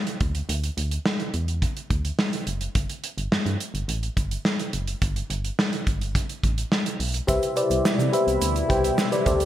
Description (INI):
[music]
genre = 1980s-style pop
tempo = 106 BPM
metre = 4/4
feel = straight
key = unclear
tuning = A4 = 440 Hz
[part]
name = modern studio drum kit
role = drums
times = 0.1-9.5 s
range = hi-hat, kick drum, snare drum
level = -25 LUFS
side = right 1 dB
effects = gated reverb
[part]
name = solid FM bass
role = bass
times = 0.2-9.5 s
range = F#1 to C3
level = -27 LUFS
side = equal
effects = none
[part]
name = mellow FM electric piano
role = accompaniment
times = 7.3-9.5 s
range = G4 to G5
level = -22 LUFS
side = left 2 dB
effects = chorus
[part]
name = sweeping resonant pad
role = sustained chords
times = 7.3-9.5 s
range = B2 to E4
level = -28 LUFS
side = right 1 dB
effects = chorus
[part]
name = egg shaker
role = percussion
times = 7.3-9.5 s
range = none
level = -39 LUFS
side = right 8 dB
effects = none
[sound]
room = moderate plate reverb, RT60 1.9 s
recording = bright 1980s-style digital production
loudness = -22 LUFS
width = side -12 dB against mid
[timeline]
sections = 0.0-9.5 A section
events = none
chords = 0.2 Dsus2; 2.8 N.C.; 7.3 Cmaj7